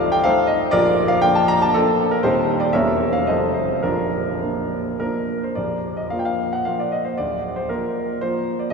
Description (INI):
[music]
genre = classical, romantic triple-time dance for piano with dotted rhythms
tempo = 96-129 BPM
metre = 3/4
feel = rubato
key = Bb major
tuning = A4 = 442 Hz
[part]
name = warm grand piano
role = solo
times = 0.0-8.7 s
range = Bb0 to Bb5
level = -18 LUFS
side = equal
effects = none
[sound]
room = wet cathedral reverb, RT60 5.6 s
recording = recorded in a church or concert hall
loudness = -18 LUFS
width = side -4 dB against mid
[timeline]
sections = 0.0-5.6 A section; 5.6-8.7 B section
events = none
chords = 0.0 F7/C; 0.7 Bb; 2.2 Cm/Eb; 2.7 Edim7; 3.3 F7; 3.8 Bb; 5.6 Bb5; 7.2 Bb/D